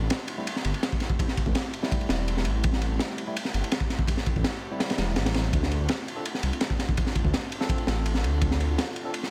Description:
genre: drum and bass, jungle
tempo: 166 BPM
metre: 4/4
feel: straight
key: D minor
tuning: A4 = 439 Hz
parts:
  - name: ethereal airy pad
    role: sustained chords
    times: 0.0-9.3 s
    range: A3 to G4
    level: -41 LUFS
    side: equal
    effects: none
  - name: dark detuned saw bass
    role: bass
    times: 0.0-8.8 s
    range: E1 to D2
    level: -29 LUFS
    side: equal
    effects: tube saturation
  - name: crunchy breakbeat drum kit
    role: drums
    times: 0.1-9.3 s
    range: kick drum, ride cymbal, snare drum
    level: -29 LUFS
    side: equal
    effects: none
  - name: bright tine electric piano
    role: stabs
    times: 0.4-9.1 s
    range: G3 to A4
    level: -38 LUFS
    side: equal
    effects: dub echo
room: small room ambience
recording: none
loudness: -27 LUFS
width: mono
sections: 0.0-9.3 A section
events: none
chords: 0.0 Am7; 5.5 Dm7

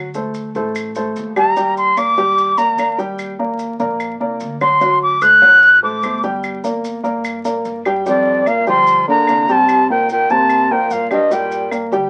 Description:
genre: Afro-Cuban jazz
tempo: 148 BPM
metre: 4/4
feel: straight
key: G minor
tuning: A4 = 436 Hz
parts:
  - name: warm baby grand piano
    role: accompaniment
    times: 0.0-12.1 s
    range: F#3 to G5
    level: -23 LUFS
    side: equal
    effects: none
  - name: upright bass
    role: bass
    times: 0.0-12.1 s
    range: G1 to G2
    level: -38 LUFS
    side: equal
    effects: none
  - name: maracas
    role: percussion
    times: 0.1-12.1 s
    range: none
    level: -43 LUFS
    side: equal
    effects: none
  - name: claves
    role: percussion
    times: 0.8-11.9 s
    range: none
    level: -31 LUFS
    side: equal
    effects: none
  - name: mellow concert flute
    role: melody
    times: 1.4-11.7 s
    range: D5 to F#6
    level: -14 LUFS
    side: equal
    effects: none
  - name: breathy baritone saxophone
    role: second line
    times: 8.1-11.7 s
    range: F2 to F3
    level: -23 LUFS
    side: equal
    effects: none
room: moderate club reverb, RT60 0.6 s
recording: very old 78 rpm record, vinyl crackle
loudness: -15 LUFS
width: mono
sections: 0.0-8.1 A section; 8.1-12.1 B section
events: flute solo 0.0-8.1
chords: 0.0 D7(no3); 1.6 Ebmaj7; 4.8 D7; 6.4 Gm; 8.1 Gm7; 9.7 C5; 11.3 Gm

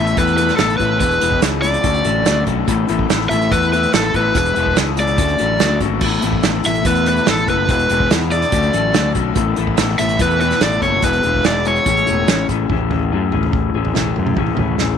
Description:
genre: indie rock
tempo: 144 BPM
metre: 4/4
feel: straight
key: A major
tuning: A4 = 440 Hz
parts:
  - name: overdriven electric guitar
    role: melody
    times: 0.0-12.5 s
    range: A4 to E5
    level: -17 LUFS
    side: right 1 dB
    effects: slapback echo
  - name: string machine, full ensemble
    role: sustained chords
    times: 0.0-12.7 s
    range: A2 to E4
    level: -28 LUFS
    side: right 2 dB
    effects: none
  - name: electric guitar through a small old amp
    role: riff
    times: 0.0-15.0 s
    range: D3 to A4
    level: -20 LUFS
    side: left 15 dB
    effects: none
  - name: fuzz fingered electric bass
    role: bass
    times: 0.0-15.0 s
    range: E1 to F#2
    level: -20 LUFS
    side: equal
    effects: overdrive
  - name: unplugged drum kit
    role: drums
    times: 0.1-14.9 s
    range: crash cymbal, hi-hat, kick drum, snare drum, toms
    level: -20 LUFS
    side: right 4 dB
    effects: none
room: small room ambience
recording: 1960s-style stereo, lossy compression artefacts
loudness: -14 LUFS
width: side -8 dB against mid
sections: 0.0-12.7 A section; 12.7-15.0 B section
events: none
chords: 0.0 Asus2; 1.0 E; 1.8 Dmaj7; 2.7 Asus2; 4.4 E; 5.2 Dmaj7; 6.0 Asus2; 7.7 E; 8.5 Dmaj7; 9.4 Asus2; 11.0 E; 11.9 Amaj7

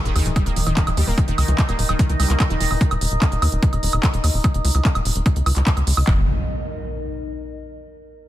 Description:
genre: psychedelic trance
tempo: 147 BPM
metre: 4/4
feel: straight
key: unclear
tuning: A4 = 438 Hz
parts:
  - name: overtone-sweeping drone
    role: sustained chords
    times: 0.0-6.1 s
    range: Eb4 to Eb5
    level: -30 LUFS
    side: equal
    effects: chorus, built-in reverb, sidechain pumping
  - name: sub drop and impact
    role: sound effects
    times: 0.0-1.2, 6.2-7.7 s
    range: none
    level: -28 LUFS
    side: equal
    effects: none
  - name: warbly tape-like pad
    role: texture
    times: 0.2-7.7 s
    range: Eb4 to Eb5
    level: -36 LUFS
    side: left 3 dB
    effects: chorus, built-in reverb, sidechain pumping
  - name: wide unison pluck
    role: riff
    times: 0.1-2.7, 6.1-6.3 s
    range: Eb3 to Bb3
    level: -28 LUFS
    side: right 1 dB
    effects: auto-pan, sidechain pumping, digital delay
  - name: tight sequencer bass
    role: bass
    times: 0.1-6.3 s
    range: Eb1 to Eb2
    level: -19 LUFS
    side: equal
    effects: none
  - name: techno drum kit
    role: drums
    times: 0.1-6.1 s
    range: handclaps, hi-hat, woodblock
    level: -25 LUFS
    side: right 2 dB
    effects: none
  - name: techno drum kit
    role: drums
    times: 0.4-6.2 s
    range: handclaps, kick drum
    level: -18 LUFS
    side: equal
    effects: none
room: little or no reverb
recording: none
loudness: -17 LUFS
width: side -14 dB against mid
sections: 0.0-6.1 A section; 6.1-7.7 B section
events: fade-out on ambient pad 0.0-6.1; impact 0.0-1.2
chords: 0.0 Eb5

